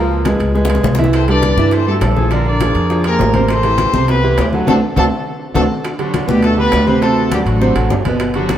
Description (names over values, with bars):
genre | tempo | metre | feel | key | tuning
latin, salsa | 204 BPM | 4/4 | straight | G major | A4 = 437 Hz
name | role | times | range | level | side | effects
mellow horn section | melody | 0.0-8.6 s | F#3 to D5 | -18 LUFS | left 1 dB | none
bright concert grand piano | accompaniment | 0.0-8.6 s | B2 to E#5 | -17 LUFS | right 2 dB | none
upright bass | bass | 0.0-8.6 s | G1 to G2 | -16 LUFS | equal | none
bongos | percussion | 0.1-8.6 s | none | -26 LUFS | left 2 dB | none
congas | percussion | 0.1-8.6 s | none | -23 LUFS | left 2 dB | none
timbales | percussion | 0.3-8.6 s | none | -26 LUFS | right 3 dB | none
room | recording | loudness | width
wet plate reverb, RT60 2.5 s | heard from further back in the room | -12 LUFS | side -10 dB against mid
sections
0.0-5.8 A section; 5.8-8.6 B section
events
drum fill 0.3-1.1, 4.7-5.8; band accent 4.7-5.8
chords
0.0 C#6; 1.1 C6; 2.3 Bb9; 3.5 Am9; 4.7 D7; 5.8 G; 7.0 D7